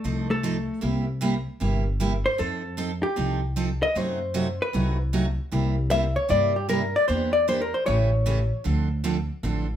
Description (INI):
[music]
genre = country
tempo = 153 BPM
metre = 4/4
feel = swing 65% on 8ths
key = C mixolydian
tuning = A4 = 443 Hz
[part]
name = vintage hollow-body jazz guitar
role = melody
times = 0.0-8.6 s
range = A3 to E5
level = -24 LUFS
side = left 1 dB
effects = plate reverb
[part]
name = picked steel-string acoustic guitar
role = accompaniment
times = 0.0-9.7 s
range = C3 to A4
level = -28 LUFS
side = right 3 dB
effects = none
[part]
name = upright bass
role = bass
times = 0.0-9.8 s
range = G1 to G2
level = -26 LUFS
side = equal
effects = none
[sound]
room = light reverb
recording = none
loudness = -22 LUFS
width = side -10 dB against mid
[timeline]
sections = 0.0-9.8 A section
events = hollow-body jazz guitar solo 0.0-9.8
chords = 0.0 F7; 0.8 C7; 2.4 F9; 4.0 F#dim7; 5.5 C7; 7.1 Em7b5; 7.9 A7; 8.7 Dm7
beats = 0.05 0.44 | 0.83 1.22 1.61 2.00 | 2.39 2.79 3.18 3.57 | 3.96 4.35 4.74 5.13 | 5.52 5.91 6.30 6.70 | 7.09 7.48 7.87 8.26 | 8.65 9.04 9.44